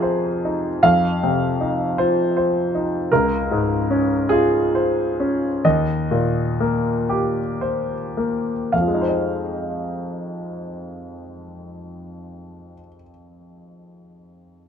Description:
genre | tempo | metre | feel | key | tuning
classical, contemporary piece for solo grand piano | 35-54 BPM (dotted quarters) | 6/8 | rubato | F minor | A4 = 440 Hz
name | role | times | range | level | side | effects
bright grand piano | solo | 0.0-14.7 s | Db2 to F5 | -19 LUFS | equal | none
room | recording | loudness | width
light reverb | minimal, uncompressed stereo recording | -18 LUFS | side -8 dB against mid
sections
0.0-8.7 A section; 8.7-12.1 B section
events
slowing down 2.0-8.7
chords
0.0 Fm7; 3.1 Dbmaj7; 5.6 Cm7/Eb; 8.7 Fm7

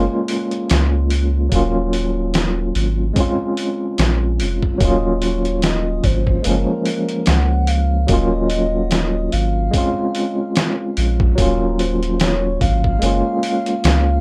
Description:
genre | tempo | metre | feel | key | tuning
trip hop | 73 BPM | 4/4 | swing 56% on 16ths | unclear | A4 = 440 Hz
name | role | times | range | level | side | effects
overdriven tine electric piano | accompaniment | 0.0-14.2 s | F3 to F4 | -22 LUFS | equal | fast tremolo, vintage 12-bit sampler grit, plate reverb
soft dub sub bass | bass | 0.0-14.2 s | Eb1 to Db2 | -21 LUFS | equal | none
trip hop sampler-style drum kit | drums | 0.3-14.1 s | hi-hat, kick drum, snare drum | -22 LUFS | equal | none
pure breathy sine lead | melody | 4.8-14.2 s | Bb4 to Gb5 | -28 LUFS | equal | phaser, subtle chorus, plate reverb, tape echo
room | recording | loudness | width
light reverb | rough home demo mix | -18 LUFS | mono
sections
0.0-14.2 A section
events
none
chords
0.0 Gbmaj7 (rootless); 1.5 Ebm7; 3.2 Bbm7; 4.8 Ebm7; 6.4 Gbmaj7; 8.1 Ebm7; 9.7 Bbm7; 11.4 Ebm7; 13.0 Gbmaj7

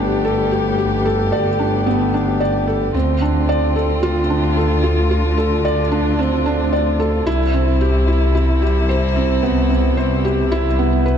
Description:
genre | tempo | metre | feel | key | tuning
piano and strings electronica | 111 BPM | 4/4 | straight | D dorian | A4 = 441 Hz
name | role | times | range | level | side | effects
dark string quartet | sustained chords | 0.0-11.2 s | C3 to G4 | -23 LUFS | left 3 dB | none
felt-muted upright piano | riff | 0.0-11.2 s | B3 to D5 | -18 LUFS | right 1 dB | ping-pong delay
rich studio double bass section | bass | 0.0-11.2 s | G1 to D2 | -18 LUFS | equal | none
room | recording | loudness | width
light reverb, small room ambience | dark, warm production, nothing above 10.6 kHz | -15 LUFS | side -8 dB against mid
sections
0.0-11.2 A section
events
none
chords
0.0 Gadd9; 2.9 Dm7; 7.3 Cmaj7

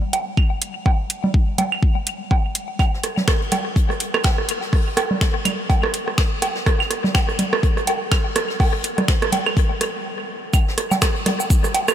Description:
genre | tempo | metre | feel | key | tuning
techno | 124 BPM | 4/4 | swing 57% on 16ths | none | none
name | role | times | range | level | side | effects
garage drum kit | drums | 0.1-11.9 s | cabasa, finger snaps, hi-hat | -26 LUFS | equal | overdrive
electronic woodblock, claves, congas and rim click | percussion | 0.1-11.9 s | none | -22 LUFS | right 2 dB | ping-pong delay
electronic kick drum | drums | 0.4-11.6 s | none | -18 LUFS | equal | overdrive
jazz brush drum kit | drums | 2.8-11.9 s | hi-hat, snare drum | -33 LUFS | left 3 dB | sidechain pumping on hats, high-pass filter on hats, high-pass filter on snare, high-pass filter on room
room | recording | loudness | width
light reverb | none | -18 LUFS | side -10 dB against mid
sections
0.0-10.5 A section; 10.5-11.9 B section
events
stop 10.1-10.5; drop 10.5-11.9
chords
none

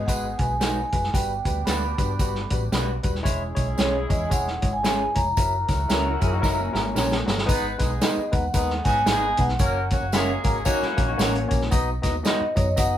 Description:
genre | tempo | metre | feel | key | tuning
uptempo 1960s-style soul | 114 BPM | 4/4 | swing 60% on 8ths | unclear | A4 = 440 Hz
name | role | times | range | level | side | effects
vibraphone with soft mallets | melody | 0.0-13.0 s | C#5 to B5 | -26 LUFS | right 1 dB | none
clear horn section | second line | 0.0-11.5 s | D#3 to B4 | -33 LUFS | equal | none
vintage muted fingered electric bass | bass | 0.0-13.0 s | D#1 to G#2 | -28 LUFS | equal | none
barky tine electric piano | accompaniment | 0.1-12.9 s | F#3 to E5 | -29 LUFS | left 2 dB | none
warm soul drum kit | drums | 0.1-12.9 s | hi-hat, kick drum, snare drum | -24 LUFS | equal | none
tambourine | percussion | 0.1-12.9 s | none | -38 LUFS | right 4 dB | none
electric guitar through a small old amp | stabs | 0.6-12.4 s | C#4 to B4 | -28 LUFS | right 2 dB | none
electric guitar through a small old amp | riff | 6.1-7.3, 10.7-11.7 s | A#3 to A#4 | -30 LUFS | left 3 dB | none
room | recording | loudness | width
moderate studio ambience, RT60 0.5 s | band playing live in one room | -21 LUFS | side -11 dB against mid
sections
0.0-7.5 A section; 7.5-13.0 B section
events
drum fill 6.4-7.5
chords
0.0 G#m7; 1.1 Gmaj7; 3.3 E6; 5.4 F#7; 7.5 G#m; 9.6 F#; 11.7 B

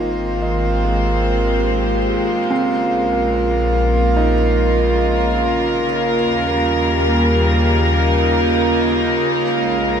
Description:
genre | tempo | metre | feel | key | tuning
ambient | 72 BPM | 4/4 | straight | Bb dorian | A4 = 444 Hz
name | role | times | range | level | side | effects
rich chamber string section | sustained chords | 0.0-10.0 s | Db3 to C5 | -19 LUFS | equal | none
felt-muted upright piano | arpeggios | 0.0-6.1 s | Ab3 to Eb5 | -27 LUFS | right 1 dB | tape echo
deep rumbling drone | bass | 0.0-10.0 s | Ab1 to Eb2 | -21 LUFS | left 1 dB | built-in reverb
hand-pumped harmonium | drone | 0.0-10.0 s | Bb3 to F4 | -19 LUFS | right 2 dB | none
room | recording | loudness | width
moderate huge ambient reverb, RT60 8.5 s | none | -14 LUFS | side -7 dB against mid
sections
0.0-10.0 A section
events
fade-in on string section 0.0-10.0; fade-in on felt piano 0.0-10.0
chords
0.0 Abmaj7; 2.5 Bbm7; 5.8 Eb7; 9.2 Bbm7

